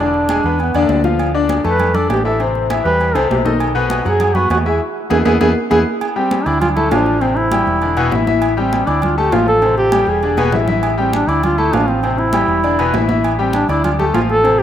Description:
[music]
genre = latin, salsa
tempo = 199 BPM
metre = 4/4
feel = straight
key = A minor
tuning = A4 = 439 Hz
[part]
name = warm duduk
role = melody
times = 0.0-14.6 s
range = B3 to B4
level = -17 LUFS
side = right 1 dB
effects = none
[part]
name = bright concert grand piano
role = accompaniment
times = 0.0-14.6 s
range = B2 to D6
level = -18 LUFS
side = left 5 dB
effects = none
[part]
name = hollow-body short-scale fingered electric bass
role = bass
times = 0.0-14.6 s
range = E1 to F#2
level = -20 LUFS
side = right 1 dB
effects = none
[part]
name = agogo bells and timbales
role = percussion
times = 0.0-14.6 s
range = none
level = -23 LUFS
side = right 6 dB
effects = none
[part]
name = congas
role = percussion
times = 0.1-14.6 s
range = none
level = -23 LUFS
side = equal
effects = none
[sound]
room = moderate lush hall reverb, RT60 2.9 s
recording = rough home demo mix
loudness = -13 LUFS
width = side -10 dB against mid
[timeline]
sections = 0.0-6.0 A section; 6.0-14.6 B section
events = band accent 4.8-6.0; drum fill 10.4-10.8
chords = 0.0 E7; 1.2 Dmadd9; 2.4 Am7; 3.6 B; 4.8 E; 6.0 D9sus4; 6.6 Dm; 7.2 Am7; 7.8 E5; 8.4 Am7; 9.0 Dm; 9.6 Am7; 10.2 E7; 10.8 A5; 11.4 Dm; 12.0 Am7; 12.6 E5; 13.2 A5; 13.8 Dm

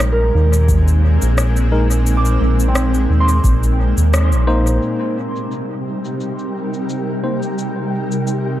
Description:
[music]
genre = ambient dub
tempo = 87 BPM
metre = 4/4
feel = swing 54% on 16ths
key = C minor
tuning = A4 = 440 Hz
[part]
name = granular cloud pad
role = sustained chords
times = 0.0-8.6 s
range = Bb2 to Bb4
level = -21 LUFS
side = equal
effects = built-in reverb
[part]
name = round analog bass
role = bass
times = 0.0-4.8 s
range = Bb1 to Eb2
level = -14 LUFS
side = equal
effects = tube saturation
[part]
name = electronic rim click and cabasa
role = drums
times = 0.0-8.4 s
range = none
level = -26 LUFS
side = left 1 dB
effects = low-pass filter on perc, low-pass filter on snare, dub echo
[part]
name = concert harp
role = arpeggios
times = 0.1-5.7 s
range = C4 to D6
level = -25 LUFS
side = right 2 dB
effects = dub echo
[part]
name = electronic kick drum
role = drums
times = 0.7-3.6 s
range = none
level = -19 LUFS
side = equal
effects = none
[part]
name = tine electric piano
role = stabs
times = 1.7-7.4 s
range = Ab3 to C5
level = -24 LUFS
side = left 2 dB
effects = dub echo
[part]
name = wind-like tuned noise texture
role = texture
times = 5.4-8.6 s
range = G3 to G4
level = -27 LUFS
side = equal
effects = built-in reverb
[sound]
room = light reverb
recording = none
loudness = -14 LUFS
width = side -13 dB against mid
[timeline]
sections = 0.0-4.8 A section; 4.8-8.6 B section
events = band accent 4.1-4.5; filter sweep on drum 4.8-8.6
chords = 0.0 Bb7sus4; 4.8 Cm7

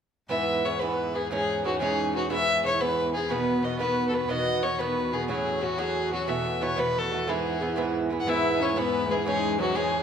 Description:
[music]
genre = celtic folk, Celtic jig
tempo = 120 BPM (dotted quarters)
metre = 6/8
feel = straight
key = E major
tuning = A4 = 440 Hz
[part]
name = warm fiddle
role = melody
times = 0.3-10.0 s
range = F#4 to F#5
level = -27 LUFS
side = left 2 dB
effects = none
[part]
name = Irish bouzouki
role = accompaniment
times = 0.3-10.0 s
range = G#2 to F#4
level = -27 LUFS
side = right 3 dB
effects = none
[part]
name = clear cello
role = drone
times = 0.3-10.0 s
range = E2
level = -38 LUFS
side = equal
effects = none
[part]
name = clear viola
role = second line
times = 8.3-10.0 s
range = F#3 to E4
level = -30 LUFS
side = left 8 dB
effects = none
[sound]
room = moderate recital hall reverb, RT60 1.5 s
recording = none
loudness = -24 LUFS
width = side -7 dB against mid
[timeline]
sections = 0.3-8.3 A section; 8.3-10.0 A section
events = none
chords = 0.3 E; 1.3 C#madd9; 2.3 E; 3.3 B; 5.3 F#m; 6.3 B7sus4; 6.8 B7; 7.3 E; 9.3 C#madd9

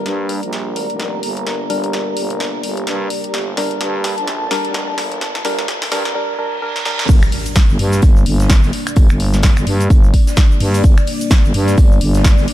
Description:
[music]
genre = bass house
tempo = 128 BPM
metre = 4/4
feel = swing 58% on 16ths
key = G minor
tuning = A4 = 440 Hz
[part]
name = dark analog pad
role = sustained chords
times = 0.0-12.5 s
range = Bb3 to Bb5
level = -24 LUFS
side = left 1 dB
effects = chorus, sidechain pumping
[part]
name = percussive organ stab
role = stabs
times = 0.0-7.1 s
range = G3 to Bb4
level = -24 LUFS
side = equal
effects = chorus, vintage 12-bit sampler grit, sidechain pumping, digital delay
[part]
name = growling FM bass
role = bass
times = 0.0-12.5 s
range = F1 to G2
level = -19 LUFS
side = equal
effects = sidechain pumping, high-pass filter
[part]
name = riser, reverse cymbal and impact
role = sound effects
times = 0.0-9.0 s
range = none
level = -30 LUFS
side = right 1 dB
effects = none
[part]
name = house drum kit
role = drums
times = 0.1-12.5 s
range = crash cymbal, finger snaps, hi-hat, snare drum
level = -22 LUFS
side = equal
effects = high-pass filter on hats, high-pass filter on snare, high-pass filter on toms, high-pass filter on cymbals
[part]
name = electronic kick drum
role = drums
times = 7.1-12.4 s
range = none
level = -11 LUFS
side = equal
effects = none
[part]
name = huge arena drum kit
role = drums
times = 7.1-12.5 s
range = hi-hat, snare drum, tambourine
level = -32 LUFS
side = right 2 dB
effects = high-pass filter on hats, high-pass filter on snare, high-pass filter on perc, high-pass filter on room
[part]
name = tube shaker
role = percussion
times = 7.1-12.5 s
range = none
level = -33 LUFS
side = right 3 dB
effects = none
[sound]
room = small room ambience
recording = dark, warm production, high-pass filter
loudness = -13 LUFS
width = side -14 dB against mid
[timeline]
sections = 0.0-7.1 A section; 7.1-12.5 B section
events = build-up 0.0-7.1; drum fill 0.0-6.2, 6.7-7.1; riser 0.0-7.1; filter sweep on synth stab 0.0-7.1; filter sweep 0.0-7.1; reverse cymbal 6.2-7.1; drop 7.1-12.5; impact 7.1-9.0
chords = 0.0 Gm

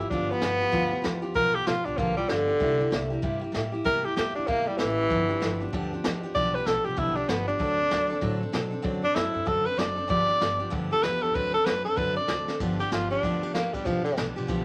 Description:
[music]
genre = rockabilly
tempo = 192 BPM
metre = 4/4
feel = swing 62% on 8ths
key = G mixolydian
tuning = A4 = 440 Hz
[part]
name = breathy tenor saxophone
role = melody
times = 0.0-14.2 s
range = D3 to D5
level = -28 LUFS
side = equal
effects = none
[part]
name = picked steel-string acoustic guitar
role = accompaniment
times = 0.0-14.6 s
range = G2 to A4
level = -34 LUFS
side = equal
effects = none
[part]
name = upright bass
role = bass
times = 0.1-14.6 s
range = F#1 to B2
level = -38 LUFS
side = equal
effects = none
[part]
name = jazz brush drum kit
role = drums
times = 0.1-14.6 s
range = hi-hat, kick drum, ride cymbal, snare drum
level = -35 LUFS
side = equal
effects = none
[sound]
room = moderate small room ambience, RT60 0.5 s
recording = vinyl crackle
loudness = -27 LUFS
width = mono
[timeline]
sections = 0.0-12.6 A section; 12.6-14.6 B section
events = tenor saxophone solo 0.0-12.6; drum fill 12.4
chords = 0.0 G7; 2.6 C7; 5.1 G7; 7.6 D7; 10.1 G7; 11.4 D7; 12.6 G7

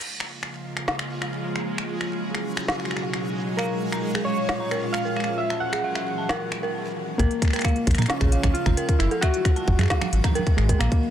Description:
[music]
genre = IDM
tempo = 133 BPM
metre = 4/4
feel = straight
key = Bb phrygian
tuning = A4 = 440 Hz
[part]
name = icy glass pad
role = sustained chords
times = 0.4-11.1 s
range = Bb2 to Gb4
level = -30 LUFS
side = equal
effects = chorus, built-in reverb
[part]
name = organic electronic drum kit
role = drums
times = 0.0-11.0 s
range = congas, finger snaps, hi-hat, snare drum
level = -29 LUFS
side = equal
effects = soft clipping on snare, digital delay
[part]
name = backwards swelling texture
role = texture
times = 1.1-6.7 s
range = Ab3 to Ab4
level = -34 LUFS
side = right 2 dB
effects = built-in reverb
[part]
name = warbly lo-fi synth keys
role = melody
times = 3.6-11.1 s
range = Ab3 to Gb5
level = -28 LUFS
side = equal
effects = chorus, digital delay
[part]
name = dark detuned synth bell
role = arpeggios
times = 3.6-10.9 s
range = Ab4 to Bb5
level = -31 LUFS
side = right 2 dB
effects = chorus, vintage 12-bit sampler grit, digital delay
[part]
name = dark detuned saw bass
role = bass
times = 7.2-10.9 s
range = Gb1 to Bb2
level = -22 LUFS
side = equal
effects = none
[part]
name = electronic kick drum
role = drums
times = 7.2-11.0 s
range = none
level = -22 LUFS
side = equal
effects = none
[sound]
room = light reverb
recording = dense, heavily limited modern master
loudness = -22 LUFS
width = side -10 dB against mid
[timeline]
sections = 0.0-7.2 A section; 7.2-11.1 B section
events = stop 6.7-7.2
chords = 0.0 Bbm7; 1.8 Gb5; 2.7 Abm7; 3.6 Bbm7; 5.4 Gbm7; 6.3 Abm7; 7.2 Bbm7; 9.0 Gbm7; 9.9 Abm7

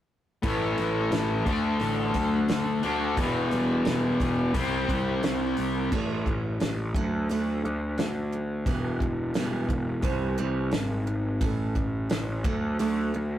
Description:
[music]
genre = quiet-loud alternative rock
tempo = 88 BPM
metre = 4/4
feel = straight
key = unclear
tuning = A4 = 440 Hz
[part]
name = picked steel-string acoustic guitar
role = arpeggios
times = 0.4-13.4 s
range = A2 to E4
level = -34 LUFS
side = right 4 dB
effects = none
[part]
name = distorted electric guitar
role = riff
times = 0.4-5.9 s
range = E2 to D4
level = -25 LUFS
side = left 2 dB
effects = distortion
[part]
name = fuzz picked electric bass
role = bass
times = 0.4-13.4 s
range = E1 to D2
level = -29 LUFS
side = equal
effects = overdrive
[part]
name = loose indie drum kit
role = drums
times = 0.4-12.9 s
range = crash cymbal, hi-hat, kick drum, snare drum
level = -30 LUFS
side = right 1 dB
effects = none
[sound]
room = light reverb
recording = rough rehearsal-room recording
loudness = -24 LUFS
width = side -12 dB against mid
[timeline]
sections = 0.4-5.9 A section; 5.9-13.4 B section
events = none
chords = 0.4 A5; 1.5 D; 3.2 Em; 4.5 C5; 5.9 A5; 6.9 D; 8.7 Em; 10.0 C; 11.4 A5; 12.4 D

